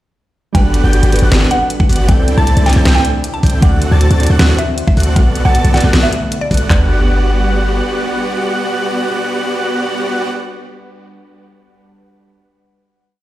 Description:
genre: future bass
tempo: 156 BPM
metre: 4/4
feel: half-time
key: G major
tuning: A4 = 441 Hz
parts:
  - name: mallet-like synth pluck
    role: melody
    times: 0.5-10.3 s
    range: D5 to A5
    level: -21 LUFS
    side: right 1 dB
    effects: chorus, phaser, sidechain pumping, digital delay
  - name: glassy digital keys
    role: accompaniment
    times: 0.5-12.3 s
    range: B2 to F#5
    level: -24 LUFS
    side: right 2 dB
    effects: chorus, phaser, sidechain pumping, tape echo
  - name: airy breathy pad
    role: sustained chords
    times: 0.5-10.3 s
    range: C3 to F#5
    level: -25 LUFS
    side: equal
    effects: chorus, vintage 12-bit sampler grit, sidechain pumping
  - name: airy dreamy lead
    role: arpeggios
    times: 0.5-10.3 s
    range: F#6 to A6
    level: -25 LUFS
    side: right 1 dB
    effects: chorus, sidechain pumping
  - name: supersaw chords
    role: riff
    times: 0.5-10.3 s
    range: B3 to A5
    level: -19 LUFS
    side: right 1 dB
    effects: sidechain pumping, tape echo
  - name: warm 808-style bass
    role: bass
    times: 0.5-7.8 s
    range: G1 to D2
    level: -12 LUFS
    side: equal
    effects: sidechain pumping
  - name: pop drum kit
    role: drums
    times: 0.5-6.8 s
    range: handclaps, kick drum, toms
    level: -12 LUFS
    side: equal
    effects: overdrive
  - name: pop drum kit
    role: drums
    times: 0.5-6.7 s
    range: hi-hat, snare drum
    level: -18 LUFS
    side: equal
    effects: overdrive
room: light reverb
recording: played on a big sound system in a bare room, large studio reverb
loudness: -11 LUFS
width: side -15 dB against mid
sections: 0.5-6.7 drop; 6.7-9.8 final chord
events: drop 0.5-6.7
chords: 0.5 Gmaj7; 2.1 C69; 3.6 D7; 5.2 Bm7; 6.7 Gmaj7

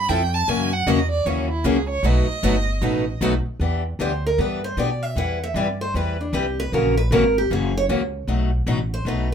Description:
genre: acoustic string swing (jazz manouche)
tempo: 154 BPM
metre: 4/4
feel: swing 63% on 8ths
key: unclear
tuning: A4 = 440 Hz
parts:
  - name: warm violin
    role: second line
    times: 0.0-3.2 s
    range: E4 to B5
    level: -24 LUFS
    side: right 4 dB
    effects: none
  - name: upright bass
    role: bass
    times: 0.0-9.3 s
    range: F#1 to B2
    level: -23 LUFS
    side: equal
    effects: none
  - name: picked steel-string acoustic guitar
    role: accompaniment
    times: 0.1-9.3 s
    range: B2 to B4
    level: -24 LUFS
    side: left 5 dB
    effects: none
  - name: picked steel-string acoustic guitar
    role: accompaniment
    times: 0.1-3.3 s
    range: B2 to B4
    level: -27 LUFS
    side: right 6 dB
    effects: none
  - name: picked acoustic archtop guitar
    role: melody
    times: 4.0-9.3 s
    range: D4 to F#5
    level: -24 LUFS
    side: right 2 dB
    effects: none
room: moderate club reverb, RT60 0.5 s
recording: minimal, uncompressed stereo recording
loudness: -19 LUFS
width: side -8 dB against mid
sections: 0.0-3.6 A section; 3.6-9.3 A section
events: violin solo 0.0-3.6; steel-string acoustic guitar solo 3.6-9.3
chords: 0.5 F#7; 2.0 B7; 3.6 Em7; 5.2 Cmaj7/E; 6.7 F#7; 8.3 B7

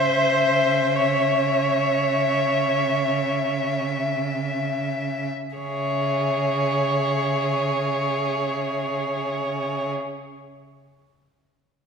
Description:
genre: classical, slow romantic movement for string quartet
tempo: free time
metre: none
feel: none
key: C# minor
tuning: A4 = 441 Hz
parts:
  - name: rich violin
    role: melody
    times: 0.0-9.9 s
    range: E5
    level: -28 LUFS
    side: left 9 dB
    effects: none
  - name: warm violin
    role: second line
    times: 0.0-9.9 s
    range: G#4 to E5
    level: -28 LUFS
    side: left 3 dB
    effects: none
  - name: rich viola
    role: accompaniment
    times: 0.0-9.9 s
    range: B#4 to C#5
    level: -24 LUFS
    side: right 3 dB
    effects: none
  - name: clear cello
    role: bass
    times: 0.0-9.9 s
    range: C#3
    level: -27 LUFS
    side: right 4 dB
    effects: none
room: wet concert hall reverb, RT60 1.8 s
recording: minimal, uncompressed stereo recording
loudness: -21 LUFS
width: side -6 dB against mid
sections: 0.0-5.6 A section; 5.6-11.9 B section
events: slowing down 0.0-5.6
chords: 0.0 C#m

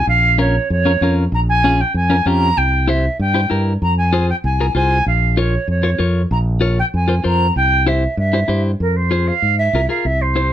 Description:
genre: latin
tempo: 193 BPM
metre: 4/4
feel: straight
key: F harmonic minor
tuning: A4 = 440 Hz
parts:
  - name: silver concert flute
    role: melody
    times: 0.0-10.5 s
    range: Bb4 to Bb5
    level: -18 LUFS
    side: right 2 dB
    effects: none
  - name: fingered electric bass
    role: bass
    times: 0.1-10.5 s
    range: Bb1 to Ab2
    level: -17 LUFS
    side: equal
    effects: none
  - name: clean electric guitar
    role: accompaniment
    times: 0.4-10.5 s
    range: Db4 to Db5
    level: -20 LUFS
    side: left 3 dB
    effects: none
room: light reverb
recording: none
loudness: -14 LUFS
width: side -11 dB against mid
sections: 0.0-8.8 A section; 8.8-10.5 B section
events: none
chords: 0.1 Bbm; 2.6 C7; 3.8 Fm; 5.1 Bbm; 7.6 C; 8.8 Fm

